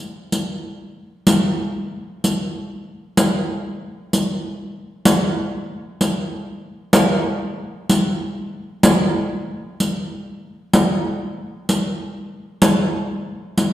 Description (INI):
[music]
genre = italian folk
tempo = 95 BPM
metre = 3/4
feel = straight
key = none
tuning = none
[part]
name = riq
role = percussion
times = 0.3-13.7 s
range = none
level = -18 LUFS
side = equal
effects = none
[sound]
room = wet recital hall reverb, RT60 1.6 s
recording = recorded in a church or concert hall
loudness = -18 LUFS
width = side -13 dB against mid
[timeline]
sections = 0.0-1.3 A section; 1.3-13.7 B section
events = none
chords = none